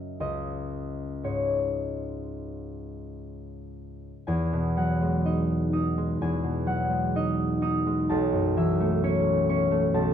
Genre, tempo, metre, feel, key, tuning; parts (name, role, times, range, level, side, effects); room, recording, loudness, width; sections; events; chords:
classical, solo harp piece; 58-67 BPM; 4/4; rubato; C# minor, E major from 4.3 s; A4 = 440 Hz
concert harp; solo; 0.0-10.1 s; B1 to D#6; -25 LUFS; equal
light reverb; dark, warm production; -24 LUFS; side -8 dB against mid
0.0-4.3 A section; 4.3-10.1 B section
0.2 C#madd9; 4.3 Emaj9; 8.1 B9sus4